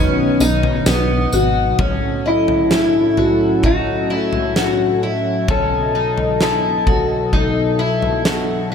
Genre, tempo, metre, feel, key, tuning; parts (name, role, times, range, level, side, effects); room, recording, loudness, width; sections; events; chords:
dream pop; 65 BPM; 4/4; straight; A lydian; A4 = 439 Hz
electric guitar through a small old amp; melody; 0.0-8.2 s; E4 to B4; -19 LUFS; left 2 dB; ping-pong delay
mellow electric guitar; accompaniment; 0.0-2.3 s; B2 to D#4; -24 LUFS; right 3 dB; harmonic tremolo, wide subtle chorus
warm analog pad; sustained chords; 0.0-8.7 s; A2 to D#5; -22 LUFS; right 1 dB; chorus
picked twelve-string acoustic guitar; arpeggios; 0.0-8.7 s; B3 to D#5; -20 LUFS; left 3 dB; wide subtle chorus, ping-pong delay
plucky analog bass; bass; 0.0-1.7 s; G#1 to B1; -19 LUFS; equal
huge arena drum kit; drums; 0.4-8.5 s; kick drum, snare drum, tambourine, toms; -21 LUFS; equal
moderate huge ambient reverb, RT60 6.0 s; -14 LUFS; side -7 dB against mid
0.0-1.8 A section; 1.8-8.7 B section
0.0 B; 1.8 A6; 5.5 B7